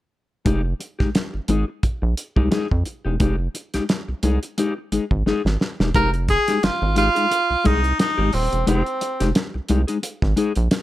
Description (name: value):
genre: funk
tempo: 88 BPM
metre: 4/4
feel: swing 56% on 16ths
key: F minor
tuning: A4 = 440 Hz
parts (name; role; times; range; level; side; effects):
- mellow electric guitar; accompaniment; 0.5-10.8 s; Ab3 to Ab4; -23 LUFS; left 4 dB; harmonic tremolo
- rubbery square bass; bass; 0.5-10.7 s; Eb1 to F2; -21 LUFS; equal; none
- cloth-damped thuddy drum kit; drums; 0.5-10.8 s; hi-hat, kick drum, snare drum; -22 LUFS; equal; none
- clear tenor saxophone; melody; 6.0-9.3 s; C4 to Bb4; -20 LUFS; right 1 dB; none
room: small room ambience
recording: none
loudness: -18 LUFS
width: side -15 dB against mid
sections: 0.5-5.9 A section; 5.9-10.8 B section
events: drum fill 5.3-5.9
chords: 0.5 Fm9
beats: | 0.46 1.15 1.83 2.52 | 3.21 3.89 4.58 5.26 | 5.94 6.63 7.31 7.99 | 8.67 9.35 10.03 10.71